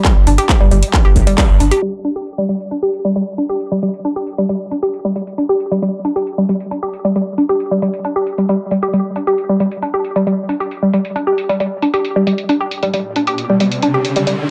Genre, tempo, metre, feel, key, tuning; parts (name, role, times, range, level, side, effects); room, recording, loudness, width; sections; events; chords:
driving peak-time techno; 135 BPM; 4/4; straight; A4 = 438 Hz
woody wave-folded pluck; riff; 0.0-14.3 s; G3 to G4; -18 LUFS; equal; chorus, tube saturation, sidechain pumping, tape echo
electronic kick drum; drums; 0.0-1.5 s; -15 LUFS; equal; distortion
techno drum kit; drums; 0.0-14.4 s; handclaps, hi-hat; -25 LUFS; equal; low-pass filter on snare, sidechain pumping on hats, low-pass filter on hats
warm sub bass; bass; 0.2-1.7 s; G1; -15 LUFS; equal; sidechain pumping, low-pass filter
riser; sound effects; 13.1-14.5 s; -24 LUFS; equal
moderate plate reverb, RT60 1.9 s, digital ambience; low-pass filter; -16 LUFS; mono
0.0-1.8 A section; 1.8-14.5 B section
band accent 1.4; filter sweep on synth arpeggio sound 1.8-14.5; filter sweep 1.8-14.5; riser 13.1-14.5
0.0 G5